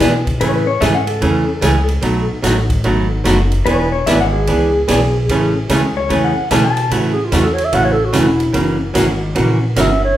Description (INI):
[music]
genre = country, western swing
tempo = 148 BPM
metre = 4/4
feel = swing 65% on 8ths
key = A major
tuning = A4 = 437 Hz
[part]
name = clean lap steel guitar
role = second line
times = 0.0-6.9 s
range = E4 to A5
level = -19 LUFS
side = left 3 dB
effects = none
[part]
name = archtop guitar, miked and amplified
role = accompaniment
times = 0.0-9.9 s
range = B2 to G#4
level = -16 LUFS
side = right 2 dB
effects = none
[part]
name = upright bass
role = bass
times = 0.0-10.2 s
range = E1 to B2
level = -18 LUFS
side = equal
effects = none
[part]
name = swinging big-band drum kit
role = drums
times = 0.0-9.9 s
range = hi-hat, kick drum, ride cymbal, snare drum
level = -23 LUFS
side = equal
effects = none
[part]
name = breathy clarinet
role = second line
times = 7.1-10.2 s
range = E4 to F#5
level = -17 LUFS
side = right 2 dB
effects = none
[sound]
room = wet large studio reverb, RT60 0.8 s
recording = band playing live in one room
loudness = -13 LUFS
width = side -12 dB against mid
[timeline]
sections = 0.0-6.9 A section; 6.9-10.2 A section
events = electric slide guitar solo 0.0-6.9; clarinet solo 6.9-10.2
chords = 0.4 Amaj7; 2.0 B7; 3.7 E7; 5.3 Amaj7; 6.9 A6; 8.5 F#7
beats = 0.00 | 0.41 0.82 1.22 1.63 | 2.03 2.44 2.85 3.25 | 3.66 4.07 4.47 4.88 | 5.29 5.69 6.10 6.50 | 6.91 7.32 7.72 8.13 | 8.54 8.95 9.35 9.76 | 10.17